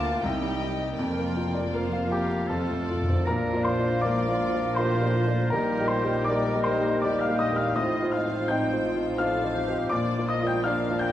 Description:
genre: classical, romantic movement for piano and orchestra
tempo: 81 BPM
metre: 3/4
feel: rubato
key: Bb major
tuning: A4 = 440 Hz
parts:
  - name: rich studio violin section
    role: melody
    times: 0.0-11.1 s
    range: Eb4 to A5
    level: -42 LUFS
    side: left 4 dB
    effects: none
  - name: warm grand piano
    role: melody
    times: 0.0-11.1 s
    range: C2 to G6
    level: -27 LUFS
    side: left 1 dB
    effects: none
  - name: rich studio violin section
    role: second line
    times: 0.0-11.1 s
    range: G4 to G5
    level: -39 LUFS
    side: left 2 dB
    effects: none
  - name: dark studio viola section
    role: accompaniment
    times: 0.0-11.1 s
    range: G3 to F4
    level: -35 LUFS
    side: right 1 dB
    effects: none
  - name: dark studio double bass section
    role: bass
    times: 0.0-11.1 s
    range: F1 to D2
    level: -33 LUFS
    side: right 1 dB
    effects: none
  - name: dark symphonic cello section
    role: bass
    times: 0.0-11.1 s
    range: C2 to Bb4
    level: -35 LUFS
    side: right 2 dB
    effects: none
  - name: clear oboe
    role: second line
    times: 2.1-11.1 s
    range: G4 to G5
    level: -35 LUFS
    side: equal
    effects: none
  - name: timpani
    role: percussion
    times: 2.5-6.6 s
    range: F2 to Bb2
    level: -31 LUFS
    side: equal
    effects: none
  - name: warm clarinet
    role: second line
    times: 3.2-11.1 s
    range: Bb4 to C5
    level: -37 LUFS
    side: left 2 dB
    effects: none
  - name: mellow hollow concert flute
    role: second line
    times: 3.3-11.1 s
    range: D5 to F5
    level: -36 LUFS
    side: equal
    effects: none
  - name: mellow bassoon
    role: accompaniment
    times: 3.3-11.1 s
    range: F3 to G3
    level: -35 LUFS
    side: right 2 dB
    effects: none
  - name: mellow French horn section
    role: sustained chords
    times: 3.3-11.1 s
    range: F3 to Eb4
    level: -34 LUFS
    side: left 2 dB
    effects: none
room: wet scoring stage reverb, RT60 1.8 s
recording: vinyl crackle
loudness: -23 LUFS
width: side -12 dB against mid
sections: 0.0-3.3 A section; 3.3-11.1 B section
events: timpani fill 2.5-3.3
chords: 0.2 Cm; 1.0 Bb/F; 2.5 F; 3.3 Bb; 5.5 Eb/Bb; 7.7 F7/A; 9.9 Bb

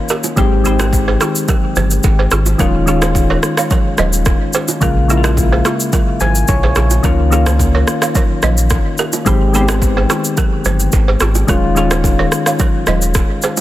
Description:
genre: afrobeats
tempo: 108 BPM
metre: 4/4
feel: straight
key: Ab major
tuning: A4 = 440 Hz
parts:
  - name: soft electric-piano-like synth keys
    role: accompaniment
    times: 0.0-13.6 s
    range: Db3 to Ab5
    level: -17 LUFS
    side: left 2 dB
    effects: chorus
  - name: balafon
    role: riff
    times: 0.1-13.5 s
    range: Eb4 to F5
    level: -21 LUFS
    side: right 4 dB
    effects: digital delay
  - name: afro-pop drum kit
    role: drums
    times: 0.1-13.6 s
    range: kick drum, rim click, shaker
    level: -16 LUFS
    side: equal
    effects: overdrive, soft clipping on snare
  - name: bongos and congas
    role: percussion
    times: 0.2-13.6 s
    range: none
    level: -25 LUFS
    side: right 8 dB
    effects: none
  - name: warm sub bass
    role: bass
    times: 0.4-13.2 s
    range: Eb1 to Db2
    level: -15 LUFS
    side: equal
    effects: none
room: little or no reverb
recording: dense, heavily limited modern master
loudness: -11 LUFS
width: side -14 dB against mid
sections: 0.0-13.6 A section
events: synth keys fill 5.9-7.0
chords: 0.4 Abmaj7; 2.6 Eb9sus4; 4.8 Bbm7; 7.0 Db69; 9.3 Abmaj7; 11.5 Eb9sus4

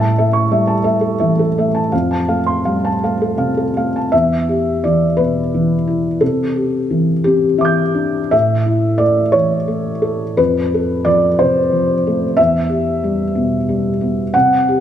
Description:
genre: neoclassical minimalist piano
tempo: 53-62 BPM (dotted quarters)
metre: 6/8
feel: rubato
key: E minor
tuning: A4 = 442 Hz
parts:
  - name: felt-muted upright piano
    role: solo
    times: 0.0-14.8 s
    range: E2 to G6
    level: -13 LUFS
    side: equal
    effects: none
room: moderate scoring stage reverb, RT60 1.7 s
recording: none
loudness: -13 LUFS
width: side -10 dB against mid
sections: 0.0-4.1 A section; 4.1-14.8 B section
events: none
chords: 0.0 A; 1.9 F; 4.1 Em; 6.2 Cadd9; 8.3 A; 10.4 F; 12.4 Em

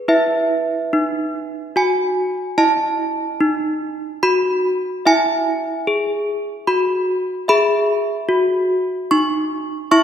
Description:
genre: classical, tune for handbells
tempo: 73 BPM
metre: 3/4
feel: straight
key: E major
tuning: A4 = 439 Hz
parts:
  - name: desk bells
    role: solo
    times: 0.0-10.0 s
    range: D#4 to C#6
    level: -16 LUFS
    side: equal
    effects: none
room: wet concert hall reverb, RT60 2.0 s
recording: heard from further back in the room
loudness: -16 LUFS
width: side -9 dB against mid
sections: 0.1-10.0 A section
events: none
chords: 0.1 E; 2.6 B7; 5.0 E

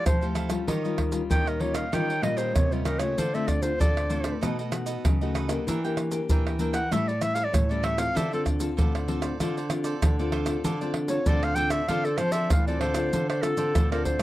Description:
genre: samba and choro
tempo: 96 BPM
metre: 4/4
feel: straight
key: D minor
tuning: A4 = 439 Hz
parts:
  - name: clear clarinet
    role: melody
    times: 0.0-14.2 s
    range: F4 to G5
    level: -28 LUFS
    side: equal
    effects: none
  - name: cavaquinho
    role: accompaniment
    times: 0.0-14.2 s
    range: D4 to G5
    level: -37 LUFS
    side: right 6 dB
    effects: none
  - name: nylon-string guitar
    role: accompaniment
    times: 0.0-14.2 s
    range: A2 to A4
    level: -32 LUFS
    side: left 6 dB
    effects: none
  - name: nylon-string guitar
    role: bass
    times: 0.1-14.2 s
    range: A2 to F3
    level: -30 LUFS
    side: equal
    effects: none
  - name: maracas, surdo, pandeiro and tamborim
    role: percussion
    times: 0.1-14.2 s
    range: none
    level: -26 LUFS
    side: right 1 dB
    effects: none
room: little or no reverb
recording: dry, close 1970s-style studio recording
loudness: -23 LUFS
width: side -15 dB against mid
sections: 0.0-13.1 A section; 13.1-14.2 B section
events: clarinet solo 0.0-13.1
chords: 0.0 Fmaj9; 0.7 Eb9; 3.2 Dm7; 4.4 B7; 5.7 Em7b5; 6.9 A7; 8.2 Dm7

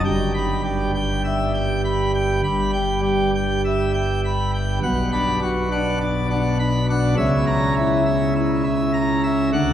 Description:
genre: classical, chorale-style piece for pipe organ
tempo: 51 BPM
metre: 4/4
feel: rubato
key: E minor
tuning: A4 = 438 Hz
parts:
  - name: pipe organ, plenum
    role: solo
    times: 0.0-9.7 s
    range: G1 to B5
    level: -18 LUFS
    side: equal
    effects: none
room: wet cathedral reverb, RT60 5.0 s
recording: heard from further back in the room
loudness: -18 LUFS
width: side -10 dB against mid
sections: 0.0-9.7 A section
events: none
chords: 0.1 Em/G; 4.8 Bm; 7.2 A#dim/C#

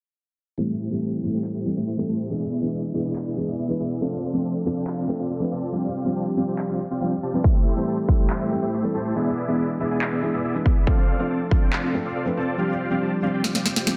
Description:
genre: future bass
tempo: 140 BPM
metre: 4/4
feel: half-time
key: A minor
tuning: A4 = 440 Hz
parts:
  - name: felt-muted upright piano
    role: accompaniment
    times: 0.6-14.0 s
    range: E3 to B4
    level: -28 LUFS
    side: equal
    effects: sidechain pumping, delay
  - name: dense compressed supersaw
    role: riff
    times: 0.6-14.0 s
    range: A3 to A5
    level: -29 LUFS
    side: equal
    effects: sidechain pumping, low-pass filter
  - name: electronic handclaps and snare drum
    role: drums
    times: 1.4-14.0 s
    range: none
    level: -29 LUFS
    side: equal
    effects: studio reverb
  - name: electronic kick drum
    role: drums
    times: 7.4-11.6 s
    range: none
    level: -21 LUFS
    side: equal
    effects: overdrive, studio reverb
room: light reverb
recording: dense, heavily limited modern master, low-pass filter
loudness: -24 LUFS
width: mono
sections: 0.6-14.0 A section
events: filter sweep 0.6-14.0; kick drops out 12.6-14.0; drum fill 13.4-14.0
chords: 0.6 Am7; 2.3 E7; 4.0 Dm7; 7.4 Am7; 9.2 E7; 10.9 Dm7

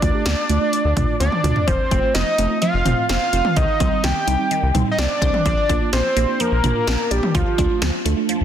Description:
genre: synth-pop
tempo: 127 BPM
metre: 4/4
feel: straight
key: unclear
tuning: A4 = 442 Hz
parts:
  - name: fat analog lead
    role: melody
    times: 0.0-7.8 s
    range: F4 to G5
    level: -21 LUFS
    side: equal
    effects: digital delay
  - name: muted felt-like synth keys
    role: accompaniment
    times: 0.0-8.4 s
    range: G3 to G4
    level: -25 LUFS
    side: right 6 dB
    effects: chorus
  - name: round analog bass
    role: bass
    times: 0.0-8.4 s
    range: F1 to D2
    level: -21 LUFS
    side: equal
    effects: none
  - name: punchy analog drum machine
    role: drums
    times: 0.0-8.4 s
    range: hi-hat, kick drum, snare drum, toms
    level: -22 LUFS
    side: equal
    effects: none
  - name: resonant blip pluck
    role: arpeggios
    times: 1.7-8.4 s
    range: Eb3 to D5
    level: -28 LUFS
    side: left 1 dB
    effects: phaser, digital delay
room: light reverb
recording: dense, heavily limited modern master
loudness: -16 LUFS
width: side -9 dB against mid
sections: 0.0-8.4 A section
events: drum fill 1.2-1.7; synth keys fill 8.3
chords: 0.0 Dm; 1.7 F; 3.6 Cm; 5.5 Bb; 7.3 Dm

